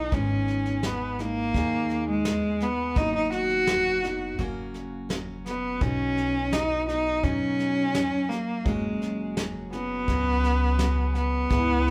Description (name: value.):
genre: acoustic folk duo or small band.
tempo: 84 BPM.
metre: 4/4.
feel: straight.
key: B major.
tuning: A4 = 441 Hz.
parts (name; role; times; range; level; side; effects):
clear cello; melody; 0.0-11.9 s; G#3 to F#4; -28 LUFS; equal; none.
picked steel-string acoustic guitar; accompaniment; 0.0-11.9 s; F#2 to G#4; -37 LUFS; equal; none.
upright bass; bass; 0.0-11.9 s; F#1 to F#2; -33 LUFS; equal; none.
soft brush drum kit; drums; 0.1-11.9 s; kick drum, snare drum; -34 LUFS; equal; none.
room: moderate large studio reverb, RT60 0.8 s.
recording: band playing live in one room.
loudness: -26 LUFS.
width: mono.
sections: 0.0-11.9 A section.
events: none.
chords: 0.1 G#m; 3.0 B/F#; 4.4 F#; 5.8 B; 8.7 F#sus2.